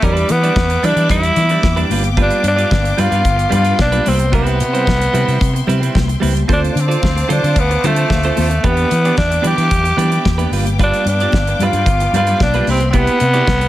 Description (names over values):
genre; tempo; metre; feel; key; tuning
disco; 111 BPM; 4/4; straight; unclear; A4 = 440 Hz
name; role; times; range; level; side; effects
raspy tenor saxophone; melody; 0.0-13.7 s; G3 to G4; -17 LUFS; equal; none
clean electric guitar; accompaniment; 0.0-13.6 s; G3 to D5; -21 LUFS; right 6 dB; none
clear studio string section; sustained chords; 0.0-13.7 s; B3 to D6; -25 LUFS; left 2 dB; none
fingered electric bass; bass; 0.0-13.7 s; G1 to E3; -17 LUFS; equal; none
damped 70s drum kit; drums; 0.0-13.7 s; hi-hat, kick drum, snare drum; -19 LUFS; equal; none
congas; percussion; 0.0-13.6 s; none; -26 LUFS; left 7 dB; none
room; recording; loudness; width
small room reverb; none; -12 LUFS; side -14 dB against mid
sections
0.0-13.7 A section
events
none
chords
0.0 Em7; 1.9 G7; 4.1 Cmaj7; 6.5 Dm7; 8.6 Em7; 10.5 G7; 12.7 Cmaj7